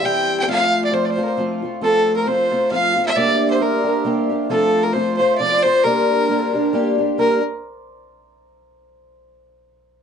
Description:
celtic folk; 134 BPM; 3/4; swing 55% on 8ths; G dorian; A4 = 439 Hz
clear fiddle; melody; 0.0-7.4 s; A4 to G5; -18 LUFS; equal
hammered dulcimer; second line; 0.0-8.3 s; A4 to A5; -26 LUFS; right 6 dB
wooden flute; second line; 0.0-7.4 s; A4 to G5; -26 LUFS; left 2 dB
fingerpicked twelve-string acoustic guitar; accompaniment; 0.0-7.4 s; E3 to G4; -20 LUFS; left 1 dB
moderate studio ambience, RT60 0.5 s; dark, warm production, nothing above 10.4 kHz, faint mains hum; -16 LUFS; side -7 dB against mid
0.0-7.2 A section; 7.2-8.5 B section
0.5 F; 3.2 Gm; 4.5 F; 5.8 Gm
0.04 | 0.48 0.93 1.38 | 1.82 2.27 2.72 | 3.16 3.61 4.06 | 4.50 4.95 5.40 | 5.84 6.29 6.74 | 7.18 7.63 8.08

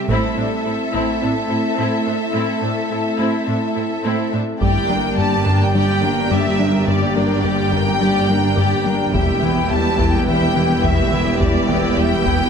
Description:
cinematic, hybrid orchestral and electronic film score; 106 BPM; 4/4; straight; G dorian; A4 = 440 Hz
clear symphonic violin section; second line; 0.0-12.5 s; E4 to G5; -24 LUFS; left 2 dB
airy breathy pad; sustained chords; 0.0-12.5 s; G3 to E5; -23 LUFS; equal; chorus
clear symphonic viola section; accompaniment; 0.1-12.5 s; G3 to G4; -26 LUFS; right 1 dB
thumb-piano-like synth pluck; arpeggios; 0.1-12.4 s; E3 to A4; -27 LUFS; right 2 dB; chorus, phaser, ping-pong delay
rich symphonic cello section; bass; 0.1-12.5 s; E2 to A2; -23 LUFS; right 3 dB
taiko ensemble; drums; 0.1-1.2, 4.6-5.7, 9.1-12.5 s; -25 LUFS; equal
warm symphonic violin section; melody; 4.6-12.5 s; D5 to A5; -23 LUFS; left 3 dB
rubbery square bass; riff; 4.6-12.4 s; E2 to G3; -22 LUFS; left 3 dB
rich studio double bass section; bass; 4.6-12.5 s; E1 to G1; -24 LUFS; right 4 dB
wet recital hall reverb, RT60 1.5 s; -15 LUFS; side -6 dB against mid
0.0-4.6 A section; 4.6-12.5 B section
build-up 0.0-4.6
0.1 Am; 4.6 Gm; 9.1 Em
| 0.09 0.65 1.22 1.79 | 2.35 2.92 3.48 4.05 | 4.62 5.18 5.75 6.31 | 6.88 7.45 8.01 8.58 | 9.14 9.71 10.28 10.84 | 11.41 11.97

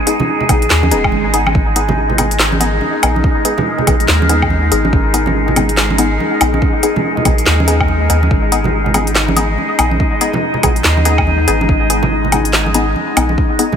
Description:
deep dubstep; 142 BPM; 4/4; swing 61% on 16ths, half-time; G# minor; A4 = 441 Hz
overtone-sweeping drone; sustained chords; 0.0-13.8 s; G#3 to D#5; -19 LUFS; left 1 dB; chorus, built-in reverb
wind-like tuned noise texture; texture; 0.0-13.8 s; G#3 to G#5; -22 LUFS; equal; built-in reverb
filtered dub chord stab; stabs; 0.1-13.7 s; B3 to G#4; -20 LUFS; left 3 dB; phaser, dub echo
deep house drum kit; drums; 0.1-13.7 s; handclaps, hi-hat, snare drum, woodblock; -17 LUFS; left 1 dB; small room ambience
congas; percussion; 0.2-13.8 s; -21 LUFS; right 4 dB; dub echo
soft dub sub bass; bass; 0.5-13.4 s; D#1 to D#2; -16 LUFS; equal
electronic kick drum; drums; 0.5-13.5 s; -16 LUFS; equal; small room ambience
swell; sound effects; 0.9-1.5 s; -24 LUFS; right 9 dB
light reverb; -11 LUFS; side -8 dB against mid
0.0-13.8 A section
swell 0.9-1.5; break 1.1-1.5
0.0 G#m
0.28 0.70 1.13 | 1.55 1.97 2.39 2.82 | 3.24 3.66 4.08 4.51 | 4.93 5.35 5.77 6.20 | 6.62 7.04 7.46 7.89 | 8.31 8.73 9.15 9.58 | 10.00 10.42 10.84 11.27 | 11.69 12.11 12.53 12.96 | 13.38

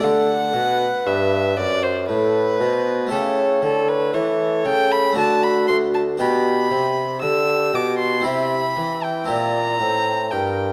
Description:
classical, baroque-style sonata movement with continuo; 58 BPM; 3/4; rubato; C major from 6.2 s; A4 = 439 Hz
warm violin; melody; 0.0-10.7 s; A4 to E6; -24 LUFS; equal
baroque flute; second line; 0.0-10.7 s; F#4 to E5; -26 LUFS; equal
harpsichord; accompaniment; 0.0-10.7 s; D2 to A4; -29 LUFS; equal
mellow bassoon; bass; 0.0-10.7 s; D2 to E3; -24 LUFS; equal
moderate recital hall reverb, RT60 1.7 s; -20 LUFS; mono
0.0-10.7 A section
0.0 D; 3.1 A7/C#; 5.2 D; 6.2 G/B; 8.2 C; 9.3 C7
| 0.03 1.06 2.09 | 3.11 4.13 5.16 | 6.19 7.22 8.25 | 9.28 10.31

